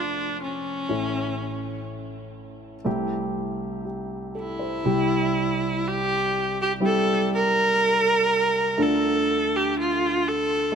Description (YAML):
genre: pop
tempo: 61 BPM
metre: 4/4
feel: straight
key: unclear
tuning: A4 = 439 Hz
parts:
  - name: clear viola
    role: melody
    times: 0.0-10.8 s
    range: C#4 to Bb4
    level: -23 LUFS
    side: equal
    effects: tape echo
  - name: dark baby grand piano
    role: accompaniment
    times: 0.0-10.8 s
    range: F1 to C5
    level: -26 LUFS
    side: right 1 dB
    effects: none
room: moderate plate reverb, RT60 3.2 s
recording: none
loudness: -21 LUFS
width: side -7 dB against mid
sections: 0.0-4.9 A section; 4.9-10.8 B section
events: none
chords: 0.0 F; 0.9 A; 2.9 C6; 4.9 C; 8.8 Dm